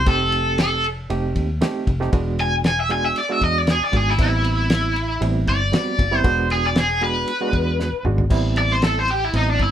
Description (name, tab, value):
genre	straight-eighth soul blues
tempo	117 BPM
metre	4/4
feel	straight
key	A dorian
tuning	A4 = 436 Hz
part	raw garage guitar	melody	0.0-9.7 s	D4 to G#5	-20 LUFS	equal	overdrive, harmonic tremolo
part	vintage muted fingered electric bass	bass	0.0-9.7 s	E1 to E2	-23 LUFS	left 1 dB	none
part	overdriven reed electric piano	accompaniment	0.1-9.7 s	G3 to G4	-25 LUFS	right 4 dB	fast tremolo
part	cloth-damped thuddy drum kit	drums	0.1-9.7 s	crash cymbal, kick drum, ride cymbal, snare drum, toms	-23 LUFS	equal	none
room	light reverb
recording	band playing live in one room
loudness	-17 LUFS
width	side -10 dB against mid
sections	0.0-8.3 A section; 8.3-9.7 A section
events	overdriven electric guitar solo 0.0-8.3, 8.3-9.7; drum fill 7.8-8.3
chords	0.1 F7; 2.1 E7; 4.2 Am9; 6.2 E7; 8.3 Am9